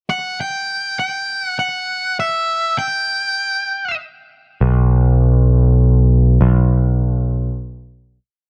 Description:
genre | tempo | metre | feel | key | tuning
post-rock | 100 BPM | 3/4 | straight | unclear | A4 = 440 Hz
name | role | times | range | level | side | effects
octave-fuzz lead guitar | melody | 0.1-4.0 s | E5 to G5 | -21 LUFS | equal | distortion, slapback echo
growling picked electric bass | bass | 4.6-8.2 s | B1 | -14 LUFS | equal | overdrive
room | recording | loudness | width
little or no reverb | dark, warm production | -17 LUFS | mono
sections
0.0-1.0 pickup bar; 1.0-8.2 A section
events
fade-out 6.4-8.2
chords
none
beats
0.40 | 1.00 1.61 2.21 | 2.81 3.41 4.01 | 4.61 5.21 5.81 | 6.41 7.01 7.61

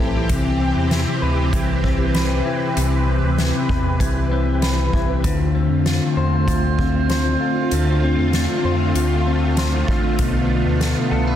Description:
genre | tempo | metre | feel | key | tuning
dream pop | 97 BPM | 4/4 | straight | unclear | A4 = 444 Hz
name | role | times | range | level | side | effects
string machine, violas | sustained chords | 0.0-11.4 s | D3 to B4 | -22 LUFS | right 1 dB | phaser, ensemble chorus, shimmer reverb
electric guitar at the edge of break-up | arpeggios | 0.0-11.4 s | A2 to C5 | -22 LUFS | left 4 dB | wide subtle chorus, tape echo, shimmer reverb
round analog bass | bass | 0.0-11.4 s | A1 to F2 | -21 LUFS | equal | none
soft-mallet drum kit | drums | 0.3-11.0 s | hi-hat, kick drum, snare drum | -24 LUFS | equal | none
drifting glass-harmonics texture | texture | 6.1-11.4 s | B4 to F5 | -31 LUFS | right 8 dB | chorus, built-in reverb, tape echo, shimmer reverb
room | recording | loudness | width
moderate plate reverb, RT60 1.6 s | dense, heavily limited modern master | -16 LUFS | side -10 dB against mid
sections
0.0-11.4 A section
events
none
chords
0.3 Cmaj7; 5.2 Dm7; 10.2 Bm7b5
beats
| 0.29 0.91 1.53 2.15 | 2.77 3.39 4.01 4.62 | 5.24 5.86 6.48 7.10 | 7.72 8.34 8.96 9.57 | 10.19 10.81

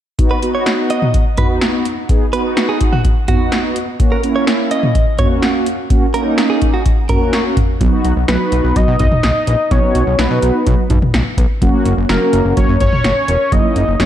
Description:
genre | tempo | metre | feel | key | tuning
synth-pop | 126 BPM | 4/4 | straight | B major | A4 = 440 Hz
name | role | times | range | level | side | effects
mellow synth brass | accompaniment | 0.2-14.1 s | A#3 to G#4 | -18 LUFS | right 1 dB | chorus
electro analog drum machine | drums | 0.2-14.1 s | hi-hat, kick drum, snare drum, toms | -15 LUFS | equal | none
direct-recorded clean electric guitar | second line | 0.3-7.4 s | F#4 to D#5 | -22 LUFS | right 2 dB | slapback echo
soft round pluck | arpeggios | 7.8-14.1 s | F#3 to B4 | -22 LUFS | right 5 dB | chorus, slapback echo
fat analog bass | bass | 7.8-14.1 s | E1 to B2 | -16 LUFS | equal | none
fat analog lead | melody | 8.3-14.1 s | A#4 to D#5 | -17 LUFS | left 1 dB | chorus, slapback echo
room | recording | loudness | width
moderate recital hall reverb, RT60 1.7 s | dark, warm production | -12 LUFS | side -11 dB against mid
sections
0.2-7.8 A section; 7.8-14.1 B section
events
none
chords
0.2 B; 4.0 F#; 7.8 B; 11.6 F#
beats
| 0.19 0.66 1.14 1.62 | 2.09 2.57 3.04 3.52 | 4.00 4.47 4.95 5.43 | 5.90 6.38 6.85 7.33 | 7.81 8.28 8.76 9.23 | 9.71 10.19 10.66 11.14 | 11.62 12.09 12.57 13.04 | 13.52 14.00

